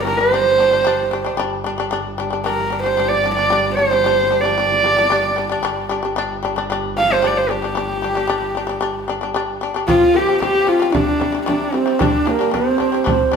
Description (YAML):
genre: mongolian traditional, Mongolian folk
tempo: 113 BPM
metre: 4/4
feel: straight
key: G yu mode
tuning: A4 = 440 Hz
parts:
  - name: warm horsehead fiddle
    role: melody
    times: 0.0-13.3 s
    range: Bb3 to F5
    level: -16 LUFS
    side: right 1 dB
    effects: none
  - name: clear double bass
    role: drone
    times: 0.0-9.9 s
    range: G1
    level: -29 LUFS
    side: right 2 dB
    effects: none
  - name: shamisen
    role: arpeggios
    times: 0.1-13.4 s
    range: C3 to D4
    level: -22 LUFS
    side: left 4 dB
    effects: none
  - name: breathy bright low xiao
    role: second line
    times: 9.9-13.3 s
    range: D4 to C5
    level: -20 LUFS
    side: right 5 dB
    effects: none
  - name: frame drum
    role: percussion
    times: 9.9-13.4 s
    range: none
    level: -22 LUFS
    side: right 1 dB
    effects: none
room: wet large studio reverb, RT60 1.2 s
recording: band playing live in one room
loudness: -15 LUFS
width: side -6 dB against mid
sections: 0.0-9.9 A section; 9.9-13.4 B section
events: none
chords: 0.0 G5; 9.9 F5; 10.9 C5; 12.0 G5